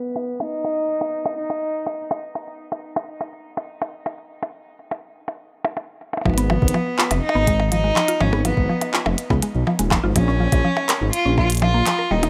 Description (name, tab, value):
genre	IDM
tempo	123 BPM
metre	4/4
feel	straight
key	unclear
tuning	A4 = 440 Hz
part	rich cello	melody	0.0-2.1, 6.3-12.3 s	Cb4 to F4	-26 LUFS	equal	vintage 12-bit sampler grit, delay
part	glitchy drum kit	drums	0.2-12.3 s	handclaps, hi-hat, percussion blips	-26 LUFS	equal	overdrive, low-pass filter on snare, studio ambience, low-pass filter on perc, low-pass filter on hats
part	mallet-like synth pluck	arpeggios	6.3-12.3 s	F3 to Bb4	-26 LUFS	equal	chorus, digital delay
part	dark detuned saw bass	bass	6.3-12.3 s	Eb1 to Db2	-23 LUFS	equal	tube saturation
part	electronic kick drum	drums	6.3-11.5 s	none	-23 LUFS	equal	overdrive, studio ambience
room	light reverb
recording	low-pass filter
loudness	-21 LUFS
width	mono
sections	0.0-6.3 A section; 6.3-12.3 B section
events	filter sweep 0.0-6.3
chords	0.0 N.C.; 6.3 Abm6; 10.2 Bbm